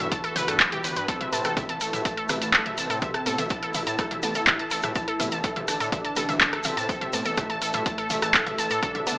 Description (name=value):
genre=melodic techno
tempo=124 BPM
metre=4/4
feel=straight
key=A dorian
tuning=A4 = 439 Hz
part: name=mellow synth brass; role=melody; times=0.0-9.2 s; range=E2 to E4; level=-34 LUFS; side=equal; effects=chorus, cassette tape, sidechain pumping, digital delay
part: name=deep dark ambient pad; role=sustained chords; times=0.0-9.2 s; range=B3 to D5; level=-38 LUFS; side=equal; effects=none
part: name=wide unison pluck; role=arpeggios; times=0.0-9.2 s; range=G4 to A6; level=-28 LUFS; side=equal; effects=sidechain pumping, digital delay
part: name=filtered dub chord stab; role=stabs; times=0.0-9.2 s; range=C3 to B4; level=-35 LUFS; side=right 1 dB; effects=chorus, sidechain pumping, digital delay
part: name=gritty driven synth bass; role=bass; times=0.0-9.2 s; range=D1 to A2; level=-36 LUFS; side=equal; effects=sidechain pumping
part: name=punchy analog drum machine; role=drums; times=0.0-9.2 s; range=handclaps, hi-hat, rim click, toms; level=-25 LUFS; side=equal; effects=sidechain pumping on hats, sidechain pumping on toms
part: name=electronic kick drum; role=drums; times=0.1-8.9 s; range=none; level=-31 LUFS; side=equal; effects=none
part: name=egg shaker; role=percussion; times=0.1-9.2 s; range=none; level=-35 LUFS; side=left 1 dB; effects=none
room=moderate lush hall reverb, RT60 1.7 s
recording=AM radio sound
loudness=-22 LUFS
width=side -21 dB against mid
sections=0.0-9.2 A section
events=none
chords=0.0 Gmaj7; 1.1 Amadd9